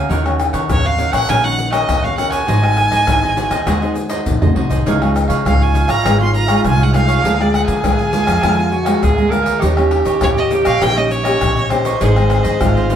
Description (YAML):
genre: samba and choro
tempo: 101 BPM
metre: 4/4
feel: straight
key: unclear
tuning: A4 = 441 Hz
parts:
  - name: cavaquinho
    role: accompaniment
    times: 0.0-13.0 s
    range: D4 to Ab5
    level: -23 LUFS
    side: right 5 dB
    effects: none
  - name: nylon-string guitar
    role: accompaniment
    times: 0.0-13.0 s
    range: Ab2 to C5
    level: -20 LUFS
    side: left 1 dB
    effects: none
  - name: upright bass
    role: bass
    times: 0.1-13.0 s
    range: Ab1 to Eb3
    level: -18 LUFS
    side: equal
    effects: none
  - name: egg shaker, surdo, pandeiro and tamborim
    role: percussion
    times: 0.1-13.0 s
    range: none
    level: -19 LUFS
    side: left 3 dB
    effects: none
  - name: rich violin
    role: melody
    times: 0.7-13.0 s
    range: C5 to C6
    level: -19 LUFS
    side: right 1 dB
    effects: none
  - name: breathy tenor saxophone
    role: second line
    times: 4.9-13.0 s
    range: Eb4 to Bb4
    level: -20 LUFS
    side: right 2 dB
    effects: none
room: moderate studio ambience, RT60 0.5 s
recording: band playing live in one room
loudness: -13 LUFS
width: side -9 dB against mid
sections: 0.0-13.0 A section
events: drum fill 3.7-4.9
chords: 0.1 Ebm7; 2.5 Ab7; 4.9 Dbadd9; 7.2 Bb7/D; 9.6 Eb7; 12.0 Ab